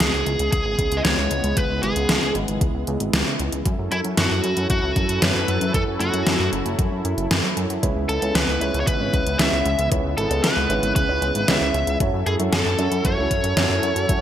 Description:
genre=synthwave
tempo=115 BPM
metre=4/4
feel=straight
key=C# minor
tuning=A4 = 442 Hz
part: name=biting lead guitar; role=melody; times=0.0-14.2 s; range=E4 to E5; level=-24 LUFS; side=equal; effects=overdrive, ping-pong delay
part: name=warm analog pad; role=sustained chords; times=0.0-14.2 s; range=C#3 to A4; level=-27 LUFS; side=equal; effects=chorus, tremolo
part: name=chorused synth bass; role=bass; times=0.0-14.2 s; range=F#1 to F#2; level=-25 LUFS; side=equal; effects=sidechain pumping
part: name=pop drum kit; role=drums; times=0.0-14.2 s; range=hi-hat, snare drum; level=-23 LUFS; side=equal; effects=overdrive, gated reverb
part: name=electronic kick drum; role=drums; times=0.5-14.2 s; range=none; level=-23 LUFS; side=equal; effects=overdrive
part: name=dark grand piano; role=stabs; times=7.8-14.2 s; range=C#4 to C#5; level=-27 LUFS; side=right 4 dB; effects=none
room=moderate plate reverb, RT60 1.8 s, digital ambience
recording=bright 1980s-style digital production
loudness=-18 LUFS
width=side -10 dB against mid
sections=0.0-14.2 A section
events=none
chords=0.0 C#m7; 3.7 F#m7; 7.8 C#m7; 12.0 F#m7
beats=0.00 0.53 1.05 | 1.57 2.09 2.61 3.13 | 3.66 4.18 4.70 5.22 | 5.74 6.26 6.79 7.31 | 7.83 8.35 8.87 9.39 | 9.92 10.44 10.96 11.48 | 12.00 12.53 13.05 13.57 | 14.09

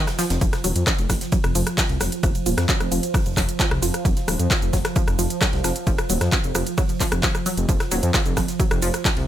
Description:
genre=driving peak-time techno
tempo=132 BPM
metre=4/4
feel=straight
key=unclear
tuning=A4 = 441 Hz
part: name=tight sequenced synth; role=riff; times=0.0-9.1 s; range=F3 to Gb3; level=-29 LUFS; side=equal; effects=chorus, sidechain pumping, ping-pong delay
part: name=deep dark ambient pad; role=drone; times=0.0-9.3 s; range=F3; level=-30 LUFS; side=right 3 dB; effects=chorus, built-in reverb, sidechain pumping
part: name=crisp fusion drum kit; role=drums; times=0.1-9.3 s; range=hi-hat, snare drum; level=-37 LUFS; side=right 3 dB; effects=none
part: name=techno drum kit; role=drums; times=0.1-9.3 s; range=handclaps, hi-hat, ride cymbal, rim click, shaker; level=-25 LUFS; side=equal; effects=none
part: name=dark detuned saw bass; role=bass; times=0.3-9.2 s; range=Eb1 to F2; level=-24 LUFS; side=equal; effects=sidechain pumping
part: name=electronic kick drum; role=drums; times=0.4-9.1 s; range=none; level=-22 LUFS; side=equal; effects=none
room=little or no reverb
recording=none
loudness=-19 LUFS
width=side -12 dB against mid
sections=0.0-9.3 A section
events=none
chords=0.0 F5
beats=| 0.41 0.87 1.32 1.78 | 2.23 2.69 3.14 3.60 | 4.05 4.51 4.96 5.42 | 5.87 6.32 6.78 7.23 | 7.69 8.14 8.60 9.05

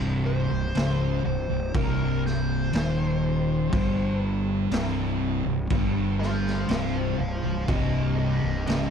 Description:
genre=stoner and doom metal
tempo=61 BPM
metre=4/4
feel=straight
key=C minor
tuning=A4 = 439 Hz
part: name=fuzz guitar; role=riff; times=0.0-8.9 s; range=C2 to G3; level=-28 LUFS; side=left 12 dB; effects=distortion
part: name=thick fuzz guitar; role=riff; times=0.0-8.9 s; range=C2 to G3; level=-28 LUFS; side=right 12 dB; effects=distortion
part: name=fuzz fingered electric bass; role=bass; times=0.0-8.9 s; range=C1 to G1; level=-29 LUFS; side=equal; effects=overdrive
part: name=fuzz lead guitar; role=melody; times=0.3-8.9 s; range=G4 to F5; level=-33 LUFS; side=left 3 dB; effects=wah, distortion, tape echo
part: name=raw garage drum kit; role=drums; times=0.8-8.9 s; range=crash cymbal, kick drum, snare drum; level=-31 LUFS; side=equal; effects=none
room=little or no reverb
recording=dark, warm production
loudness=-23 LUFS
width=side -7 dB against mid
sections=0.0-8.9 A section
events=lead electric guitar solo 0.0-8.9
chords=0.0 Cm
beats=0.75 1.74 2.73 | 3.72 4.71 5.70 6.69 | 7.68 8.67

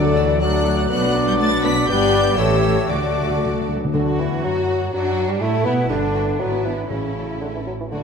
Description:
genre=quick classical-period movement for symphony orchestra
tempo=113-127 BPM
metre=2/4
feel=rubato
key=D major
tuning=A4 = 440 Hz
part: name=concert flute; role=second line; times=0.0-3.7 s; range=C#5 to D5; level=-26 LUFS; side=left 4 dB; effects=none
part: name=rich studio violin section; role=second line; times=0.0-8.0 s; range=G3 to F#5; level=-31 LUFS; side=left 3 dB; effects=none
part: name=warm clarinet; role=second line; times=0.0-3.7 s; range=F#4 to B4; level=-28 LUFS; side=left 3 dB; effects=none
part: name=dark bassoon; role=accompaniment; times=0.0-8.0 s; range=C#3 to B3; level=-24 LUFS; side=left 1 dB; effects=none
part: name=rich studio viola section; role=accompaniment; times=0.0-8.0 s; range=D3 to G4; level=-28 LUFS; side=right 1 dB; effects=none
part: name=mellow French horn section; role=sustained chords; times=0.0-3.7 s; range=A3 to G4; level=-24 LUFS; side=left 5 dB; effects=none
part: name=bright trumpet section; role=stabs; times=0.0-3.7 s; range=C#5 to D5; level=-25 LUFS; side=equal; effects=none
part: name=warm studio double bass section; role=bass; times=0.0-8.0 s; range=G1 to B2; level=-25 LUFS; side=right 2 dB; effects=none
part: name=timpani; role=percussion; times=0.0-0.6, 2.9-4.7, 6.9-8.0 s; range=A2 to D3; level=-26 LUFS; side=left 3 dB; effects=none
part: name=rich studio violin section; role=melody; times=0.2-8.0 s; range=G3 to B6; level=-29 LUFS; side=left 2 dB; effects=none
part: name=rich studio cello section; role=bass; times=0.2-8.0 s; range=D3 to F#4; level=-27 LUFS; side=right 3 dB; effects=none
room=wet scoring stage reverb, RT60 2.1 s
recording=none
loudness=-17 LUFS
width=side -6 dB against mid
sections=0.0-3.9 A section; 3.9-8.0 B section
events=timpani fill 2.9-3.9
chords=0.0 D; 0.9 Bm; 1.9 G; 2.4 A7; 2.9 D; 4.9 Bm/F#; 5.9 G; 6.4 E7/G#; 6.9 A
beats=0.40 | 0.89 1.39 | 1.88 2.38 | 2.89 3.42 | 3.94 4.44 | 4.93 5.41 | 5.89 6.39 | 6.89 7.40 | 7.92

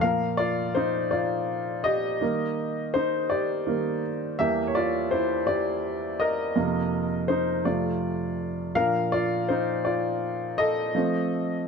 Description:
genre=pop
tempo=55 BPM (dotted quarters)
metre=6/8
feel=straight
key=Bb major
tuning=A4 = 439 Hz
part: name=clear upright piano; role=solo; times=0.0-11.7 s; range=E2 to F5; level=-24 LUFS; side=equal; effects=none
room=moderate echo chamber reverb, RT60 1.4 s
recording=dark, warm production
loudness=-24 LUFS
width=side -5 dB against mid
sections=0.0-11.7 A section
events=upright piano solo 0.0-11.7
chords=0.0 Bb; 2.2 Eb; 4.4 Em7b5; 6.6 Fsus4; 7.7 F; 8.8 Bb; 10.9 F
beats=| 0.02 1.12 | 2.22 3.31 | 4.40 5.48 | 6.57 7.66 | 8.76 9.85 | 10.95

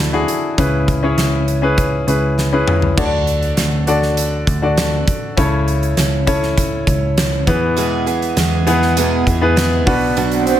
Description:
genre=piano-driven pop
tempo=100 BPM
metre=4/4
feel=straight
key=unclear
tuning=A4 = 441 Hz
part: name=clear concert grand piano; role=accompaniment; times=0.0-10.6 s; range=B2 to D5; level=-17 LUFS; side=left 2 dB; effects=none
part: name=vintage muted picked electric bass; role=bass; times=0.0-10.6 s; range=B1 to E2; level=-19 LUFS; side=equal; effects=none
part: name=huge arena drum kit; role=drums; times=0.3-10.6 s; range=crash cymbal, hi-hat, kick drum, snare drum, toms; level=-20 LUFS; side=right 1 dB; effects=none
part: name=picked steel-string acoustic guitar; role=riff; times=7.8-10.6 s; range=E2 to G#4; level=-19 LUFS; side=right 7 dB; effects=none
part: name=swell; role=sound effects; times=10.3-10.6 s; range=none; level=-17 LUFS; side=right 7 dB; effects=none
room=light reverb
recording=none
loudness=-14 LUFS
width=side -11 dB against mid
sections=0.0-3.0 A section; 3.0-10.6 B section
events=drum fill 2.4-3.0; swell 10.3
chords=0.0 Dadd9; 0.6 C#m7; 3.0 D; 5.4 A/C#; 7.5 E; 9.9 Bm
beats=| 0.58 1.18 1.78 2.38 | 2.98 3.58 4.18 4.78 | 5.38 5.97 6.57 7.17 | 7.77 8.37 8.97 9.57 | 10.17

